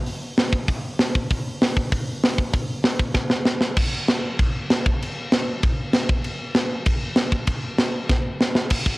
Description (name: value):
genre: punk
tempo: 194 BPM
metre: 4/4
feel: straight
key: none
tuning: none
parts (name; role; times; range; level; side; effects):
- tight metal drum kit; drums; 0.1-8.9 s; crash cymbal, hi-hat, kick drum, snare drum; -20 LUFS; equal; none
room: light reverb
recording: home recording on cassette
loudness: -20 LUFS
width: side -22 dB against mid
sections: 0.0-3.8 A section; 3.8-8.7 B section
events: drum fill 3.2-3.8, 8.1-8.7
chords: none